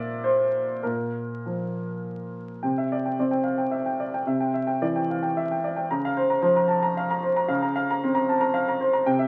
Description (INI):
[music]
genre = neoclassical minimalist piano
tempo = 99-116 BPM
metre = 3/4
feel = rubato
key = unclear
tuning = A4 = 443 Hz
[part]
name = warm upright piano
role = solo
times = 0.0-9.3 s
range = Bb2 to Bb5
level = -25 LUFS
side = equal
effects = none
[sound]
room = moderate studio reverb, RT60 0.8 s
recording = very old 78 rpm record, vinyl crackle, nothing above 10.9 kHz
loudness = -25 LUFS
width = mono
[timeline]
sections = 0.0-2.6 A section; 2.6-9.3 B section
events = none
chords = 0.0 Bb; 2.6 Cadd9; 5.9 Bbmadd9/Db